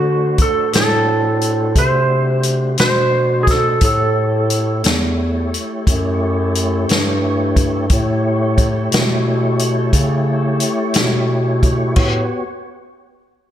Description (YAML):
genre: slow blues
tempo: 59 BPM (dotted quarters)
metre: 12/8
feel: straight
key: unclear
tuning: A4 = 440 Hz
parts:
  - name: clean lap steel guitar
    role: melody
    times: 0.0-11.3 s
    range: F#4 to C5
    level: -19 LUFS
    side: right 2 dB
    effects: slapback echo
  - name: tonewheel organ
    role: sustained chords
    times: 0.0-12.4 s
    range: A3 to C#5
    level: -22 LUFS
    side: left 1 dB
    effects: slow rotary speaker, overdrive, chorus vibrato
  - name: mellow bass clarinet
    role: bass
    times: 0.0-12.3 s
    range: E2 to D3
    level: -18 LUFS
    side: equal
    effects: none
  - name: vintage drum kit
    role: drums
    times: 0.4-12.1 s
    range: crash cymbal, hi-hat, kick drum, snare drum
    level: -17 LUFS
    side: equal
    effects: none
room: moderate lush hall reverb, RT60 1.7 s, small room ambience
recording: big arena sound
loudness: -14 LUFS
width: side -11 dB against mid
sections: 0.0-12.0 A section; 12.0-13.5 B section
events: none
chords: 0.0 D7; 3.8 A7; 12.0 A13